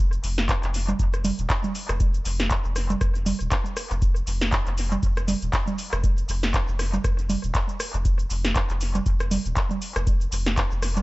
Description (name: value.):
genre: acid house.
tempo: 119 BPM.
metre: 4/4.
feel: swing 57% on 16ths.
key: unclear.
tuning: A4 = 440 Hz.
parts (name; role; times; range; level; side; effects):
warm sub bass; bass; 0.0-11.0 s; Eb1 to F1; -27 LUFS; equal; sidechain pumping.
electro analog drum machine; drums; 0.1-11.0 s; congas, handclaps, hi-hat, rim click, shaker, snare drum; -27 LUFS; right 1 dB; analog delay.
electronic kick drum; drums; 0.5-10.7 s; none; -24 LUFS; equal; none.
room: little or no reverb.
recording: echo-heavy mix, nothing above 7.9 kHz.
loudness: -22 LUFS.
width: side -20 dB against mid.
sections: 0.0-11.0 A section.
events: none.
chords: none.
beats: 0.49 0.99 1.50 | 2.00 2.51 3.01 3.51 | 4.02 4.52 5.03 5.53 | 6.04 6.54 7.04 7.55 | 8.05 8.56 9.06 9.56 | 10.07 10.57.